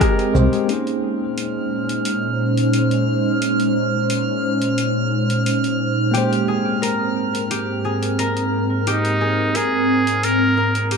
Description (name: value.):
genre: sunset chillout.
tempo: 88 BPM.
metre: 4/4.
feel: straight.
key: Bb dorian.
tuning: A4 = 441 Hz.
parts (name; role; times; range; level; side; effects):
trumpet with metal mute; melody; 0.0-0.3, 8.9-10.9 s; Eb4 to Bb4; -21 LUFS; equal; tape echo.
bell-like tine electric piano; accompaniment; 0.0-11.0 s; Ab3 to G5; -25 LUFS; equal; auto-pan, tape echo.
ethereal airy pad; sustained chords; 0.0-11.0 s; Ab2 to G5; -20 LUFS; right 1 dB; ensemble chorus, built-in reverb.
concert harp; arpeggios; 0.0-11.0 s; G4 to Bb4; -26 LUFS; left 2 dB; tape echo.
deep house drum kit; drums; 0.0-11.0 s; congas, hi-hat, rim click, shaker; -26 LUFS; left 2 dB; none.
hollow-body short-scale fingered electric bass; bass; 0.3-0.5 s; C2; -16 LUFS; equal; none.
drifting glass-harmonics texture; texture; 1.3-11.0 s; F6; -28 LUFS; right 2 dB; chorus, built-in reverb.
room: moderate plate reverb, RT60 1.8 s.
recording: dark, warm production.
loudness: -17 LUFS.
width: side -5 dB against mid.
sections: 0.7-11.0 A section.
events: none.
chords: 0.0 Abmaj9; 0.7 Bbm11; 6.1 Abmaj9.